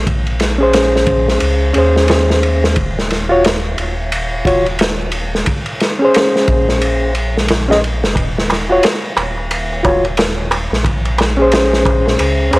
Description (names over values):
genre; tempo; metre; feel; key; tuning
trip hop; 89 BPM; 4/4; swing 60% on 16ths; Eb dorian; A4 = 439 Hz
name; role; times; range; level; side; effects
dark detuned saw bass; bass; 0.0-12.6 s; Eb1 to Eb2; -18 LUFS; equal; none
crunchy breakbeat drum kit; drums; 0.1-12.6 s; kick drum, ride cymbal, snare drum; -16 LUFS; equal; none
reed electric piano; accompaniment; 0.6-12.6 s; Db4 to Eb5; -14 LUFS; equal; harmonic tremolo, tape echo
darbuka; percussion; 8.2-12.6 s; none; -22 LUFS; right 2 dB; none
room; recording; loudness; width
small room ambience; dry, gritty hardware recording, vinyl crackle; -12 LUFS; side -23 dB against mid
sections
0.0-12.6 A section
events
none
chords
0.1 Bbm7; 2.8 Ebmadd9; 5.5 Bbm7; 8.2 Ebmadd9; 10.9 Bbm7